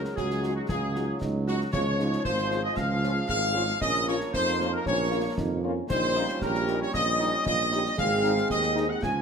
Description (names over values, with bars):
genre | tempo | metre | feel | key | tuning
military-style march for wind band | 115 BPM | 2/4 | straight | unclear | A4 = 440 Hz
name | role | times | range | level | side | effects
bright trumpet section | melody | 0.0-9.2 s | Gb4 to Ab5 | -31 LUFS | left 1 dB | none
warm euphonium | second line | 0.0-9.2 s | Db4 to Ab4 | -33 LUFS | right 2 dB | none
warm woodwind section | second line | 0.0-9.2 s | Gb4 to Ab5 | -33 LUFS | left 2 dB | none
bright trombone section | sustained chords | 0.0-9.2 s | F3 to Db4 | -36 LUFS | right 2 dB | none
mellow tuba | bass | 0.0-9.2 s | Ab1 to F2 | -30 LUFS | right 3 dB | none
concert snare drum, concert bass drum and clash cymbals | drums | 0.0-9.2 s | none | -37 LUFS | left 1 dB | none
flute section | second line | 0.2-9.2 s | Gb4 to Ab5 | -32 LUFS | equal | none
mellow French horn section | accompaniment | 0.4-8.9 s | G3 to Gb4 | -36 LUFS | left 6 dB | none
room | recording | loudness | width
moderate recital hall reverb, RT60 1.4 s | none | -24 LUFS | side -6 dB against mid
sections
0.0-9.2 A section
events
none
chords
0.0 Ab5/Db; 1.7 Db; 3.8 Bbm; 5.9 Eb7/Bb; 8.0 Ab